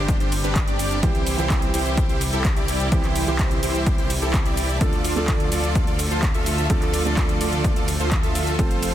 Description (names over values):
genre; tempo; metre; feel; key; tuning
EDM, festival progressive house; 127 BPM; 4/4; straight; unclear; A4 = 443 Hz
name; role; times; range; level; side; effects
felt-muted upright piano; accompaniment; 0.0-8.9 s; G2 to A4; -28 LUFS; right 4 dB; sidechain pumping, digital delay
clear studio string section; sustained chords; 0.0-8.9 s; C3 to A4; -30 LUFS; left 1 dB; sidechain pumping
dense compressed supersaw; riff; 0.0-8.9 s; D4 to E5; -27 LUFS; right 1 dB; sidechain pumping, digital delay
detuned saw bass; bass; 0.0-8.9 s; F1 to D2; -26 LUFS; equal; sidechain pumping
big-room dance drum kit; drums; 0.1-8.9 s; cabasa, handclaps, hi-hat, ride cymbal; -29 LUFS; equal; none
electronic kick drum; drums; 0.1-8.7 s; none; -22 LUFS; equal; overdrive
room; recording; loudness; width
little or no reverb; dense, heavily limited modern master; -19 LUFS; side -12 dB against mid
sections
0.0-8.9 A section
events
none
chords
0.0 Gsus4; 1.0 C; 4.8 Dm